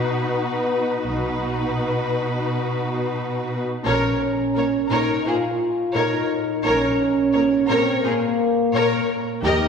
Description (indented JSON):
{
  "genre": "cinematic",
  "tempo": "86 BPM",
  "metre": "4/4",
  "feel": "straight",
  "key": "unclear",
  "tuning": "A4 = 440 Hz",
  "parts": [
    { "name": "warm symphonic violin section", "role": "melody", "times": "0.0-9.7 s", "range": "B4 to Eb5", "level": "-26 LUFS", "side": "left 2 dB", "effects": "none" },
    { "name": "warm symphonic violin section", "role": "second line", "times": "0.0-9.7 s", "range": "F#4 to Bb4", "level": "-28 LUFS", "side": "left 2 dB", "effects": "none" },
    { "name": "warm symphonic viola section", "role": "accompaniment", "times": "0.0-9.7 s", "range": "D#4 to Bb4", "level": "-28 LUFS", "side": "equal", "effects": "none" },
    { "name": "warm studio cello section", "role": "bass", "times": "0.0-9.5 s", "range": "Eb2 to B2", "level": "-28 LUFS", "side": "right 2 dB", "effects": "none" },
    { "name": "rich symphonic double bass section", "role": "bass", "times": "1.1-9.7 s", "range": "Bb1 to Eb2", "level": "-30 LUFS", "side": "right 2 dB", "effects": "none" },
    { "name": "mellow French horn section", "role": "sustained chords", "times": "3.8-9.7 s", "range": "Bb3 to F4", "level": "-21 LUFS", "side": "equal", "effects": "none" }
  ],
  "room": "wet concert hall reverb, RT60 2.1 s",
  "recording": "heard from further back in the room",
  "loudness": "-19 LUFS",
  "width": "side -6 dB against mid",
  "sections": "0.0-3.9 A section; 3.9-9.7 B section",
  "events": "build-up 0.0-3.9",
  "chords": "0.0 B; 3.9 Bbm"
}